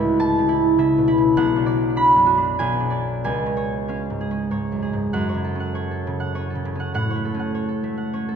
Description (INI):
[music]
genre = classical, solo harp piece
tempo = 90-104 BPM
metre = 3/4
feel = rubato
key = F# minor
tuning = A4 = 437 Hz
[part]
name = concert harp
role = solo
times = 0.0-8.4 s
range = B1 to B5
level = -19 LUFS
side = equal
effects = none
[sound]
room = wet church reverb, RT60 2.5 s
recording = minimal, uncompressed stereo recording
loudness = -19 LUFS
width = side -7 dB against mid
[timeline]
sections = 0.0-5.1 A section; 5.1-8.4 B section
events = none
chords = 0.0 A/C#; 1.4 Bm; 2.6 G#dim/B; 3.2 C#; 5.1 F#m; 6.9 F#m/A